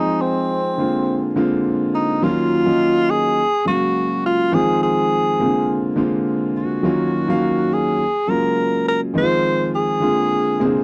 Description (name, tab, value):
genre	soul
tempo	104 BPM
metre	4/4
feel	swing 54% on 16ths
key	Eb dorian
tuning	A4 = 440 Hz
part	warm tenor saxophone	melody	0.0-10.8 s	C4 to C5	-22 LUFS	equal	none
part	warm concert grand piano	accompaniment	0.0-10.8 s	C3 to F5	-21 LUFS	equal	none
room	light reverb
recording	dry, close 1970s-style studio recording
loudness	-19 LUFS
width	mono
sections	0.0-10.8 A section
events	none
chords	0.0 Fm7; 0.8 Bb9; 2.2 Ebm9; 3.4 Gbmaj9; 4.5 Fm7; 5.4 Bb9; 6.8 Ebm9; 8.0 Gbmaj9; 9.2 Fm7; 10.0 Bb9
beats	0.50 1.08 1.65 | 2.23 2.81 3.38 3.96 | 4.54 5.11 5.69 6.26 | 6.84 7.42 8.00 8.57 | 9.15 9.73 10.30